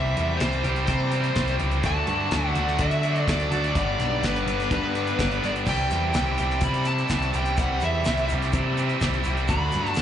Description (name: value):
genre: classic rock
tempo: 126 BPM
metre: 4/4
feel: straight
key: unclear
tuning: A4 = 440 Hz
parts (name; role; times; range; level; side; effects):
- smooth overdriven lead guitar; melody; 0.0-10.0 s; B4 to B5; -28 LUFS; left 1 dB; slapback echo
- bright tonewheel organ; sustained chords; 0.0-10.0 s; G3 to E5; -36 LUFS; equal; none
- cranked stack guitar; riff; 0.0-10.0 s; G2 to G4; -29 LUFS; right 10 dB; overdrive, slapback echo
- overdriven electric guitar; riff; 0.0-10.0 s; G2 to E4; -30 LUFS; left 11 dB; slapback echo
- growling picked electric bass; bass; 0.0-10.0 s; G1 to D3; -26 LUFS; equal; overdrive
- damped 70s drum kit; drums; 0.2-10.0 s; crash cymbal, hi-hat, kick drum, snare drum; -29 LUFS; equal; none
- tube shaker; percussion; 5.7-10.0 s; none; -47 LUFS; right 2 dB; none
room: little or no reverb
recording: live gig heard through the venue's PA, club reverb, nothing above 10.3 kHz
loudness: -21 LUFS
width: side -10 dB against mid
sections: 0.0-10.0 A section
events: none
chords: 0.0 C; 1.8 D; 3.8 G; 5.7 C; 9.5 D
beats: 0.41 0.89 1.36 | 1.84 2.32 2.80 3.28 | 3.76 4.24 4.71 5.19 | 5.67 6.15 6.62 7.10 | 7.58 8.05 8.53 9.01 | 9.48 9.96